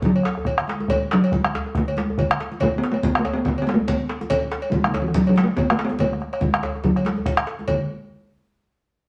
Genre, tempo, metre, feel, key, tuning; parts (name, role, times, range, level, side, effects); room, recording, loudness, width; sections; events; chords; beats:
west african traditional, West African drum ensemble; 142 BPM; 4/4; swing 56% on 16ths; A4 = 440 Hz
bombo; percussion; 0.0-7.9 s; -27 LUFS; equal
congas; percussion; 0.0-7.9 s; -30 LUFS; equal
talking drum; melody; 0.1-7.9 s; D3 to B3; -23 LUFS; equal
cowbell; percussion; 0.2-7.9 s; -30 LUFS; equal
djembe; percussion; 0.3-7.9 s; -33 LUFS; equal
wet studio reverb, RT60 0.8 s; -22 LUFS; mono
0.0-7.7 A section; 7.7-9.1 B section
speeding up 0.0-9.1; drum fill 0.5-0.9
0.03 0.47 | 0.90 1.33 1.76 2.19 | 2.61 3.04 3.46 3.89 | 4.32 4.74 5.16 5.58 | 6.00 6.42 6.84 7.26 | 7.68